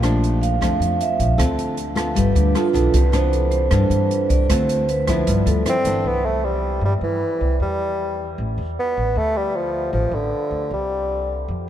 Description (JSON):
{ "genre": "bossa nova", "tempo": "154 BPM", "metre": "4/4", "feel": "straight", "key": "C major", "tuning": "A4 = 439 Hz", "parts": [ { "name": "nylon-string guitar", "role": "accompaniment", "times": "0.0-6.2 s", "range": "F2 to A4", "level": "-23 LUFS", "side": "left 2 dB", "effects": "none" }, { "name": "upright bass", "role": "bass", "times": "0.0-11.7 s", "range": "G1 to G2", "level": "-22 LUFS", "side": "equal", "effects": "none" }, { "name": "open jazz drum kit", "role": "drums", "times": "0.0-5.9 s", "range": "hi-hat, kick drum, rim click", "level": "-26 LUFS", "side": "equal", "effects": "none" }, { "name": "vibraphone with medium mallets", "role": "accompaniment", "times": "0.4-6.1 s", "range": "D4 to F5", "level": "-24 LUFS", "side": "right 5 dB", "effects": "none" }, { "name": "mellow bassoon", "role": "melody", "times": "5.7-11.5 s", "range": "D3 to C4", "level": "-22 LUFS", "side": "equal", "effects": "none" } ], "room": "moderate cathedral reverb, RT60 6.7 s", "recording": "in a vast, echoing space", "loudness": "-18 LUFS", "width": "side -11 dB against mid", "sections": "0.0-6.0 A section; 6.0-11.7 B section", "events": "vibraphone solo 0.0-6.0", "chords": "0.0 Bbmaj7; 1.4 Dm7; 2.2 G9; 2.9 Cmaj9; 4.5 Dm7; 5.3 G6; 6.0 C; 7.6 Em; 8.4 A5; 9.2 Dm; 10.7 C5", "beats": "0.22 0.61 1.00 | 1.39 1.77 2.16 2.55 | 2.94 3.33 3.71 4.10 | 4.49 4.88 5.27 5.66 | 6.04 6.43 6.82 7.21 | 7.60 7.99 8.38 8.77 | 9.16 9.55 9.94 10.33 | 10.71 11.10 11.49" }